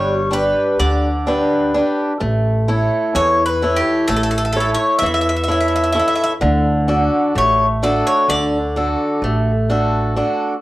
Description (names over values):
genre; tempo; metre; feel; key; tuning
greek folk, Greek bouzouki band; 128 BPM (eighths); 9/8; straight; D major; A4 = 440 Hz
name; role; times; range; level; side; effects
Greek bouzouki; melody; 0.0-9.7 s; G4 to E5; -18 LUFS; left 1 dB; cassette tape
picked swing-style acoustic guitar; accompaniment; 0.0-10.5 s; D3 to C#5; -17 LUFS; equal; cassette tape
upright bass; bass; 0.0-10.2 s; G1 to E2; -21 LUFS; equal; none
room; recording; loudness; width
moderate spring reverb, RT60 1.8 s, studio ambience; home recording on cassette; -14 LUFS; side -17 dB against mid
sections
0.0-10.6 A section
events
none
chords
0.0 G; 2.2 A; 6.4 D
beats
0.33 0.80 1.27 1.74 | 2.21 2.68 3.15 3.62 4.08 4.55 5.02 5.49 5.96 | 6.42 6.89 7.36 7.82 8.29 8.76 9.22 9.69 10.15